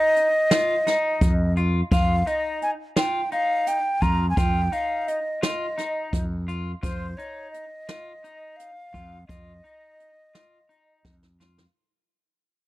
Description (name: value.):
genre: progressive instrumental, band music in an uneven meter.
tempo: 171 BPM (eighths).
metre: 7/8.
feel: straight.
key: unclear.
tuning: A4 = 441 Hz.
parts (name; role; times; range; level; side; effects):
breathy concert flute; melody; 0.0-11.0 s; C5 to Bb5; -24 LUFS; equal; none.
electric guitar at the edge of break-up; arpeggios; 0.0-11.6 s; Eb4 to F4; -31 LUFS; left 2 dB; none.
jazz brush drum kit; drums; 0.2-11.7 s; hi-hat, kick drum, snare drum; -24 LUFS; equal; none.
mellow fretless electric bass; bass; 1.2-11.7 s; F2; -24 LUFS; equal; none.
room: studio reverb.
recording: dry, close 1970s-style studio recording.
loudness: -21 LUFS.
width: side -17 dB against mid.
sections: 0.0-11.8 A section.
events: fade-out 0.0-11.8; drum fill 11.1-11.8.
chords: 0.0 F7(no3).